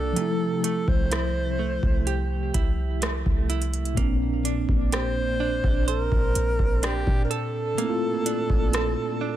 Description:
contemporary R&B; 63 BPM; 4/4; straight; A4 = 440 Hz
breathy alto saxophone; melody; 0.0-9.4 s; G4 to C5; -29 LUFS; right 1 dB; ping-pong delay
mellow tine electric piano; accompaniment; 0.0-9.4 s; Bb2 to F4; -30 LUFS; left 1 dB; medium stereo tremolo
direct-recorded clean electric guitar; arpeggios; 0.0-9.4 s; C3 to C5; -32 LUFS; right 9 dB; tremolo, ping-pong delay
clean 808-style bass; bass; 0.0-9.0 s; Bb1 to Bb2; -28 LUFS; equal
booming analog drum machine; drums; 0.2-9.0 s; hi-hat, kick drum, rim click; -25 LUFS; equal; overdrive
little or no reverb; -22 LUFS; side -12 dB against mid
0.0-9.4 A section
0.2 Fmaj9/C; 4.0 Bbmaj9

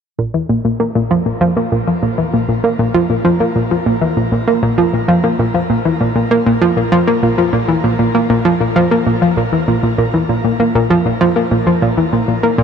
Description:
ambient; 98 BPM; 4/4; straight; A4 = 439 Hz
analog pluck; solo; 0.2-12.6 s; Bb2 to Bb3; -12 LUFS; equal; chorus, ping-pong delay
wet shimmer reverb, RT60 7.7 s; -12 LUFS; side -7 dB against mid
0.2-10.0 A section; 10.0-12.6 B section

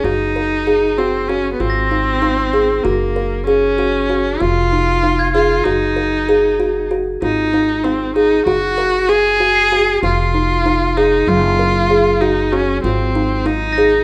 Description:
contemporary instrumental, chamber music in an uneven meter; 192 BPM (eighths); 9/8; straight; A4 = 440 Hz
rich viola; second line; 0.0-14.0 s; Bb3 to Ab4; -20 LUFS; equal
kalimba; arpeggios; 0.0-14.0 s; Gb3 to Bb4; -19 LUFS; equal
upright bass; bass; 0.0-14.0 s; F1 to Ab1; -25 LUFS; equal
glockenspiel with hard plastic mallets; texture; 1.7-14.0 s; Ab6 to C7; -27 LUFS; equal
light reverb; -16 LUFS; mono
0.0-14.0 A section
0.0 Ebm/Gb; 1.6 Abadd9; 2.9 Gbadd9; 4.4 Fm; 5.7 Ebm/Gb; 7.2 Ab5; 8.5 Gbadd9; 10.0 Fm; 11.3 Gbmaj13; 12.8 Abadd9

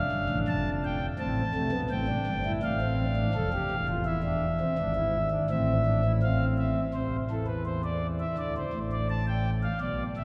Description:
classical, baroque-style 3-part fugue for pipe organ; 84 BPM; 4/4; straight; D minor; A4 = 441 Hz
pipe organ, principal; solo; 0.0-10.2 s; E1 to A5; -28 LUFS; equal
wet cathedral reverb, RT60 4.7 s; heard from further back in the room; -29 LUFS; mono
0.0-6.9 A section; 6.9-10.2 B section
0.0 Dm; 1.2 Am; 2.6 Dm/A; 4.1 E7; 5.5 Am; 6.9 Am/C (rootless); 8.4 D5

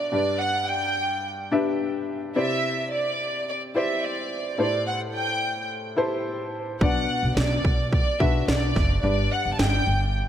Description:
piano-driven pop; 108 BPM; 4/4; straight; G major; A4 = 440 Hz
warm studio violin section; melody; 0.0-10.2 s; D5 to A5; -26 LUFS; right 1 dB
warm upright piano; accompaniment; 0.0-10.3 s; G2 to E5; -27 LUFS; left 2 dB
upright bass; bass; 6.8-10.2 s; F#1 to B1; -25 LUFS; right 1 dB
house drum kit; drums; 6.8-9.7 s; kick drum, snare drum; -24 LUFS; equal; overdrive, gated reverb
light reverb; bright 1980s-style digital production; -22 LUFS; side -10 dB against mid
0.0-10.3 A section
0.1 G; 2.4 Cadd9; 4.6 Am7; 6.8 Bm; 9.0 G

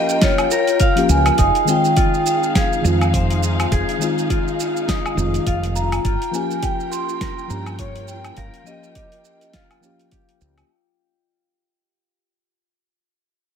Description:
sunset chillout; 103 BPM; 4/4; swing 58% on 16ths; A4 = 440 Hz
vibraphone with medium mallets; melody; 0.0-10.4 s; Db5 to C6; -22 LUFS; right 1 dB; ping-pong delay
mellow FM electric piano; accompaniment; 0.0-10.7 s; Eb3 to G4; -24 LUFS; moving between left 8 dB and right 3 dB; chorus, auto-pan, ping-pong delay
dark symphonic string section; sustained chords; 0.0-10.7 s; Eb4 to G5; -29 LUFS; left 1 dB; vintage 12-bit sampler grit
Celtic harp; arpeggios; 0.0-12.5 s; Eb4 to F5; -25 LUFS; left 5 dB; ping-pong delay
deep house drum kit; drums; 0.1-10.7 s; hi-hat, shaker, snare drum, woodblock; -24 LUFS; right 2 dB
electronic kick drum; drums; 0.2-10.3 s; -21 LUFS; right 1 dB
woody fretless electric bass; bass; 1.1-10.6 s; F1 to G2; -20 LUFS; equal
light reverb; -16 LUFS; side -7 dB against mid
0.0-10.7 A section
fade-out 1.4-10.7
0.0 Gm7b5; 1.4 Fm7; 6.0 Gm7b5

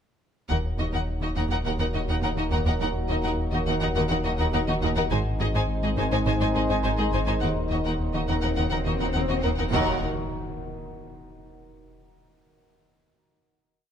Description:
cinematic, hybrid orchestral and electronic film score; 104 BPM; 4/4; straight; Eb dorian; A4 = 444 Hz
clear symphonic violin section; melody; 0.5-10.0 s; Eb5 to Ab5; -33 LUFS; left 4 dB
rich studio violin section; second line; 0.5-10.0 s; Gb4 to C5; -33 LUFS; left 3 dB
rich symphonic viola section; accompaniment; 0.5-10.1 s; Eb4; -34 LUFS; right 1 dB
analog drone; sustained chords; 1.6-10.0 s; Eb3 to C5; -35 LUFS; left 1 dB; chorus
clear trombone section; sustained chords; 0.5-10.0 s; Eb3 to Ab3; -35 LUFS; right 5 dB
dark French horn section; sustained chords; 0.5-10.0 s; Bb3 to Eb4; -34 LUFS; left 5 dB
round analog bass; riff; 0.5-9.7 s; Eb2 to Ab3; -33 LUFS; left 3 dB
clear symphonic double bass section; bass; 0.5-10.1 s; Ab1 to Eb2; -32 LUFS; right 4 dB
rich symphonic cello section; bass; 0.5-10.0 s; Eb2 to Ab2; -31 LUFS; right 2 dB
sub bass with octave; bass; 0.5-10.1 s; Eb1 to Ab1; -31 LUFS; equal
swell and impact; sound effects; 8.0-12.0 s; -34 LUFS; left 1 dB
moderate recital hall reverb, RT60 1.5 s; close, detailed microphones; -23 LUFS; side -8 dB against mid
0.5-9.7 theme; 9.7-12.0 final chord
swell 8.0-9.7; impact 9.7-12.0
0.5 Ebm; 5.1 Ab; 7.4 Ebm

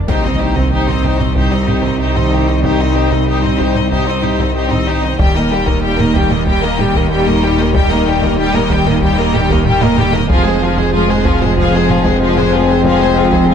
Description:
cinematic, hybrid orchestral and electronic film score; 94 BPM; 4/4; straight; A4 = 441 Hz
saturated sub bass; bass; 0.0-13.5 s; Eb1 to C2; -22 LUFS; equal
rich symphonic violin section; melody; 0.1-13.5 s; Ab4 to G5; -21 LUFS; left 5 dB
warm symphonic violin section; second line; 0.1-13.5 s; Eb4 to Bb4; -21 LUFS; left 2 dB
warm symphonic viola section; accompaniment; 0.1-13.5 s; F3 to Eb4; -20 LUFS; right 1 dB
dark French horn section; sustained chords; 0.1-13.5 s; G3 to Eb4; -19 LUFS; left 6 dB
harp-like synth pluck; arpeggios; 0.1-13.5 s; C3 to F4; -22 LUFS; right 4 dB; chorus
rich symphonic cello section; bass; 0.1-13.5 s; C2 to F2; -20 LUFS; right 2 dB
warm symphonic double bass section; bass; 0.1-13.5 s; F1 to Eb2; -21 LUFS; right 4 dB
taiko ensemble; drums; 0.1-13.5 s; -19 LUFS; equal
impact; sound effects; 0.1-2.6 s; -24 LUFS; equal
moderate scoring stage reverb, RT60 1.6 s; -11 LUFS; side -8 dB against mid
0.1-13.5 A section
impact 0.1-2.6; drum fill 9.7-10.3
0.1 Cm; 5.2 Eb; 10.3 Fm

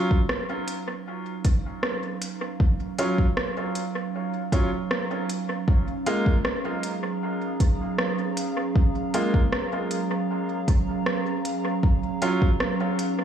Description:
ambient dub; 78 BPM; 4/4; straight; A4 = 439 Hz
warbly tape-like pad; sustained chords; 0.3-13.2 s; Gb3 to Bb5; -29 LUFS; right 2 dB; chorus, built-in reverb
bright upright piano; stabs; 0.0-12.5 s; Gb3 to F4; -29 LUFS; right 1 dB; dub echo
electronic kick drum; drums; 0.1-12.6 s; -22 LUFS; equal; overdrive
organic electronic drum kit; drums; 0.3-13.1 s; hi-hat, rim click; -30 LUFS; right 1 dB; overdrive, dub echo
light reverb, digital ambience; echo-heavy mix, studio ambience; -23 LUFS; side -9 dB against mid
0.0-13.2 A section
fade-in on ambient pad 0.0-13.2
0.0 Ebm9; 5.7 Gbmaj9

